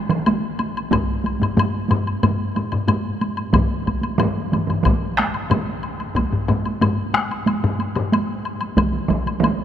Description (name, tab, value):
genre	japanese traditional, taiko drum ensemble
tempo	91 BPM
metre	4/4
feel	straight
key	none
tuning	none
part	taiko ensemble	percussion	0.1-9.6 s	none	-23 LUFS	right 2 dB	none
part	taiko ensemble	percussion	0.1-9.6 s	none	-25 LUFS	right 4 dB	none
part	woodblock	percussion	0.1-9.6 s	none	-28 LUFS	left 4 dB	none
part	taiko ensemble	percussion	0.9-8.1 s	none	-23 LUFS	left 3 dB	none
part	taiko ensemble	percussion	0.9-9.3 s	none	-26 LUFS	equal	none
room	wet cathedral reverb, RT60 5.7 s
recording	in a vast, echoing space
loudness	-18 LUFS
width	side -10 dB against mid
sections	0.0-9.6 A section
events	none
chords	none